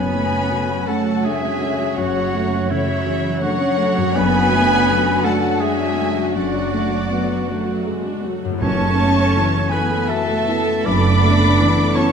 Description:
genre	cinematic, emotional film score for orchestra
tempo	82 BPM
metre	3/4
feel	rubato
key	F# minor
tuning	A4 = 439 Hz
part	warm studio violin section	melody	0.0-12.1 s	E5 to D6	-28 LUFS	left 2 dB	none
part	rich studio violin section	second line	0.0-12.1 s	C#5 to B5	-26 LUFS	left 1 dB	none
part	small flute group	second line	0.0-12.1 s	C#5 to B5	-26 LUFS	left 4 dB	none
part	warm cor anglais	second line	0.0-12.1 s	E4 to D5	-25 LUFS	right 3 dB	none
part	felt-muted upright piano	accompaniment	0.0-12.1 s	F#2 to G#4	-24 LUFS	left 2 dB	none
part	rich studio viola section	accompaniment	0.0-12.1 s	C#3 to A4	-27 LUFS	right 3 dB	none
part	warm French horn section	sustained chords	0.0-12.1 s	F#3 to C#5	-26 LUFS	left 4 dB	none
part	concert harp	arpeggios	0.0-12.1 s	F#2 to D5	-28 LUFS	left 10 dB	none
part	warm studio cello section	bass	0.0-12.1 s	E3 to D4	-24 LUFS	right 3 dB	none
part	warm studio double bass section	bass	0.0-11.5 s	F#1	-23 LUFS	right 4 dB	none
part	timpani	percussion	0.0-0.8, 8.6-9.7 s	F#2	-29 LUFS	right 1 dB	none
room	wet scoring stage reverb, RT60 1.8 s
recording	dark, warm production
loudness	-16 LUFS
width	side -6 dB against mid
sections	0.0-12.1 A section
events	none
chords	0.0 F#m; 4.2 D/F#; 8.6 Asus2/F#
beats	0.52 1.25 | 1.98 2.70 3.43 | 4.16 4.88 5.61 | 6.36 7.12 7.88 | 8.62 9.36 10.10 | 10.86 11.60

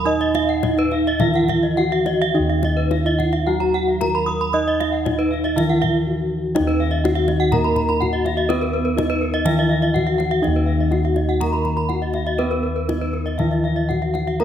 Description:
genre	Balinese gamelan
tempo	105-124 BPM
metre	4/4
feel	straight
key	Eb pelog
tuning	A4 = 441 Hz
part	gamelan-type bronze metallophone	melody	0.0-14.4 s	Cb4 to Eb5	-22 LUFS	left 1 dB	slapback echo
part	gamelan-type bronze metallophone	accompaniment	0.0-14.4 s	Eb3 to Eb4	-26 LUFS	right 5 dB	none
part	gamelan-type bronze metallophone	arpeggios	0.0-14.4 s	Bb4 to Cb6	-26 LUFS	right 5 dB	none
part	gamelan-type bossed gongs	bass	0.0-14.4 s	Eb2 to Eb5	-22 LUFS	left 1 dB	none
part	gamelan-type bronze metallophone	arpeggios	0.1-14.4 s	Bb4 to Eb6	-27 LUFS	left 4 dB	none
part	kendang	percussion	0.3-14.4 s	none	-28 LUFS	left 3 dB	none
room	moderate scoring stage reverb, RT60 1.8 s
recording	none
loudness	-17 LUFS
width	side -9 dB against mid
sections	0.0-6.6 A section; 6.6-14.4 B section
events	none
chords	none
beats	| 0.06 0.64 1.21 1.78 | 2.35 2.92 3.47 4.01 | 4.54 5.06 5.57 6.07 | 6.55 7.04 7.52 8.01 | 8.49 8.97 9.46 9.94 | 10.43 10.91 11.40 11.89 | 12.39 12.89 13.39 13.89 | 14.40

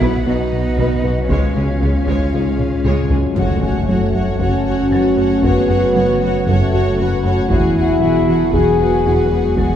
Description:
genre	cinematic, hybrid orchestral and electronic film score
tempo	116 BPM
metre	4/4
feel	straight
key	F# minor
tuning	A4 = 440 Hz
part	clear cello	melody	0.0-2.8 s	C#4 to E4	-27 LUFS	right 2 dB	tape echo
part	warm symphonic violin section	melody	0.0-9.8 s	F#4 to F#5	-32 LUFS	left 4 dB	none
part	warm symphonic violin section	second line	0.0-9.8 s	E#4 to F#5	-26 LUFS	left 1 dB	none
part	rich symphonic viola section	accompaniment	0.0-9.8 s	G#3 to F#4	-24 LUFS	equal	none
part	airy breathy pad	sustained chords	0.0-9.8 s	F#3 to B4	-22 LUFS	equal	chorus
part	thumb-piano-like synth pluck	arpeggios	0.0-9.7 s	C#3 to B4	-27 LUFS	right 1 dB	none
part	round analog bass	riff	0.0-9.7 s	C#2 to B3	-22 LUFS	left 1 dB	none
part	punchy sub bass	bass	0.0-9.8 s	E1 to C#2	-24 LUFS	equal	none
part	rich symphonic cello section	bass	0.0-9.8 s	E2 to C#3	-26 LUFS	right 2 dB	none
part	rich symphonic double bass section	bass	0.0-9.8 s	E1 to C#2	-24 LUFS	right 2 dB	none
part	taiko ensemble	drums	0.0-9.8 s	none	-25 LUFS	equal	none
part	warm concert grand piano	texture	0.0-9.8 s	F#4 to A6	-34 LUFS	right 2 dB	none
part	clear trombone section	sustained chords	0.2-2.5 s	G#2 to G#3	-31 LUFS	left 1 dB	none
part	warm French horn section	sustained chords	0.2-9.8 s	F#3 to G#4	-18 LUFS	left 1 dB	none
part	impact	sound effects	3.4-5.4 s	none	-26 LUFS	equal	none
room	wet scoring stage reverb, RT60 2.0 s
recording	heard from further back in the room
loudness	-13 LUFS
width	side -9 dB against mid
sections	0.0-3.4 A section; 3.4-9.8 B section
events	drum fill 2.6-3.4; impact 3.4-5.4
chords	0.0 B5; 1.3 C#; 3.4 F#m; 7.5 Eadd9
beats	0.26 0.78 | 1.30 1.81 2.33 2.85 | 3.37 3.88 4.40 4.92 | 5.43 5.95 6.47 6.99 | 7.50 8.02 8.54 9.05 | 9.57

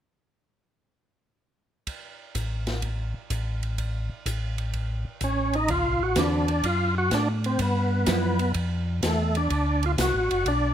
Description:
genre	soul jazz organ trio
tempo	126 BPM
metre	4/4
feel	swing 68% on 8ths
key	D mixolydian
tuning	A4 = 437 Hz
part	open jazz drum kit	drums	1.9-10.6 s	hi-hat, kick drum, ride cymbal, snare drum	-32 LUFS	right 1 dB	none
part	mellow tonewheel organ	bass	2.4-10.7 s	F#1 to A2	-26 LUFS	equal	slow rotary speaker
part	percussive tonewheel organ	melody	5.2-10.7 s	A3 to F#4	-25 LUFS	equal	slow rotary speaker, overdrive, chorus vibrato
part	vintage hollow-body jazz guitar	accompaniment	6.2-8.4 s	D3 to B4	-29 LUFS	right 3 dB	none
room	light reverb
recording	none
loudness	-23 LUFS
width	side -10 dB against mid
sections	1.9-5.7 A section; 5.7-10.7 B section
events	none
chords	1.9 N.C.; 4.7 A; 5.7 D13; 7.6 G6; 9.5 D6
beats	| 1.87 2.35 2.83 3.31 | 3.78 4.26 4.74 5.21 | 5.69 6.17 6.64 7.12 | 7.59 8.07 8.55 9.02 | 9.50 9.98 10.45

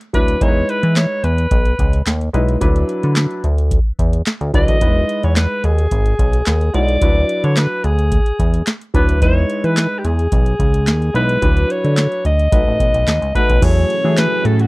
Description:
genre	early-eighties boogie funk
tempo	109 BPM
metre	4/4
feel	straight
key	E major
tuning	A4 = 439 Hz
part	booming analog drum machine	drums	0.0-14.7 s	crash cymbal, handclaps, hi-hat, kick drum, snare drum	-16 LUFS	equal	none
part	breathy alto saxophone	melody	0.1-14.7 s	F#4 to D#5	-20 LUFS	equal	none
part	warm baby grand piano	accompaniment	0.1-14.7 s	F#3 to B4	-21 LUFS	equal	none
part	chorused synth bass	bass	0.1-14.7 s	E1 to E3	-16 LUFS	equal	none
part	string machine, full ensemble	sustained chords	13.6-14.7 s	E3 to G#4	-23 LUFS	right 1 dB	ensemble chorus
room	little or no reverb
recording	dry, close 1970s-style studio recording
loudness	-13 LUFS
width	side -22 dB against mid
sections	0.0-13.6 A section; 13.6-14.7 B section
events	none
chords	0.4 Emaj7; 2.6 D69; 4.8 Emaj7; 7.0 D69; 9.2 Emaj7; 11.4 D69; 12.5 B7; 13.6 F#m9/E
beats	| 0.41 0.96 1.51 2.06 | 2.61 3.16 3.71 4.26 | 4.82 5.37 5.92 6.47 | 7.02 7.57 8.12 8.67 | 9.22 9.77 10.32 10.87 | 11.42 11.97 12.52 13.07 | 13.62 14.17

